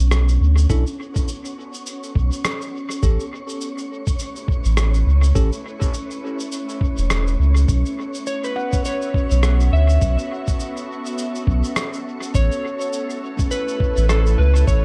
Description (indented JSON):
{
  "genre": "ambient dub",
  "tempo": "103 BPM",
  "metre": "4/4",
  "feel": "swing 59% on 16ths",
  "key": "unclear",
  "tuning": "A4 = 440 Hz",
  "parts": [
    { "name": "soft additive organ-like pad", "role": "sustained chords", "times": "0.0-14.8 s", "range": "A3 to E5", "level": "-36 LUFS", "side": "equal", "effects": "ensemble chorus, built-in reverb" },
    { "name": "warm sub bass", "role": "bass", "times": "0.0-14.8 s", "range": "E1 to D2", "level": "-18 LUFS", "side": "equal", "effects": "none" },
    { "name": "wind-like tuned noise texture", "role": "texture", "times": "0.0-14.8 s", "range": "C#4 to C#6", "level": "-33 LUFS", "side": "equal", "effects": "built-in reverb" },
    { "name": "electronic rim click and cabasa", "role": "drums", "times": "0.1-14.8 s", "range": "none", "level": "-31 LUFS", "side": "equal", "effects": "dub echo" },
    { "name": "bell-like tine electric piano", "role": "stabs", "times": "0.7-5.5 s", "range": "C#4 to A4", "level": "-34 LUFS", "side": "equal", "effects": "dub echo" },
    { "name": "electronic kick drum", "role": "drums", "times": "0.7-14.8 s", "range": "none", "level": "-23 LUFS", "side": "equal", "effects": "none" },
    { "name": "electric slide guitar", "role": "melody", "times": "8.3-14.8 s", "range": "A4 to E5", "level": "-28 LUFS", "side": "equal", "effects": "dub echo" },
    { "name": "handpan", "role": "arpeggios", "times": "8.6-14.8 s", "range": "C#4 to F#5", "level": "-36 LUFS", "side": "equal", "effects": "tape echo" }
  ],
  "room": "digital ambience",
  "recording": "echo-heavy mix",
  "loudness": "-20 LUFS",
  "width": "mono",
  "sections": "0.0-14.8 A section",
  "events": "fade-in on ambient pad 0.0-14.8",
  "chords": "0.0 Bmadd9; 3.0 A; 7.7 B9sus4; 12.3 A",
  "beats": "0.11 | 0.70 1.28 1.86 2.44 | 3.03 3.61 4.19 4.77 | 5.36 5.94 6.52 7.10 | 7.69 8.27 8.85 9.43 | 10.02 10.60 11.18 11.76 | 12.35 12.93 13.51 14.09 | 14.68"
}